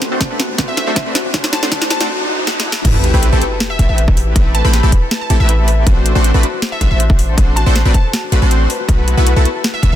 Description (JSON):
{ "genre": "future bass", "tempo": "159 BPM", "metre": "4/4", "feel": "half-time", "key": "unclear", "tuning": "A4 = 439 Hz", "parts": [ { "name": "shimmering ambient pad", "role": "sustained chords", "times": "0.0-2.1 s", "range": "A2 to D5", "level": "-31 LUFS", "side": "right 1 dB", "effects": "none" }, { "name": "concert harp", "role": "arpeggios", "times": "0.0-10.0 s", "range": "D4 to A5", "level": "-25 LUFS", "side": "left 6 dB", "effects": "sidechain pumping, low-pass filter, tape echo" }, { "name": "supersaw stab", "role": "riff", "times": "0.0-10.0 s", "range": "A3 to C5", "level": "-20 LUFS", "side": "equal", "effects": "sidechain pumping, low-pass filter, tape echo" }, { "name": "trap drum kit", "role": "drums", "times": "0.0-9.9 s", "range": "crash cymbal, hi-hat, snare drum", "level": "-20 LUFS", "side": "equal", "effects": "soft clipping on snare" }, { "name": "riser and sub drop", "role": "sound effects", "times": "0.2-4.4 s", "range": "none", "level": "-23 LUFS", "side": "equal", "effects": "none" }, { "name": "electronic kick drum", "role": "drums", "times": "0.2-9.9 s", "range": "none", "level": "-13 LUFS", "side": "equal", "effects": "none" }, { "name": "glassy wavetable pluck", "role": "melody", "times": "0.7-10.0 s", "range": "E5 to B5", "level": "-24 LUFS", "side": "left 1 dB", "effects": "chorus, sidechain pumping, tape echo" }, { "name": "warm 808-style bass", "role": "bass", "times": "2.8-10.0 s", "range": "A1 to B1", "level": "-13 LUFS", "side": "equal", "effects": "tube saturation, sidechain pumping" } ], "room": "digital ambience", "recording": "dense, heavily limited modern master, high-pass filter", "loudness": "-11 LUFS", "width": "side -12 dB against mid", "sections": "0.0-2.8 A section; 2.8-10.0 B section", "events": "build-up 0.0-2.8; drum fill 0.0-2.1, 2.5-2.8; filter sweep on supersaw synth 0.0-2.8; riser 0.2-2.8; drop 2.8-10.0; impact 2.8-4.4", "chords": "0.0 D7/A; 2.7 N.C.; 2.8 Am9; 5.9 D7/A; 8.7 B7sus4", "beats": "0.21 0.58 0.96 | 1.34 1.72 2.09 2.47 | 2.85 3.23 3.60 3.98 | 4.36 4.74 5.11 5.49 | 5.87 6.25 6.62 7.00 | 7.38 7.75 8.13 8.51 | 8.89 9.26 9.64" }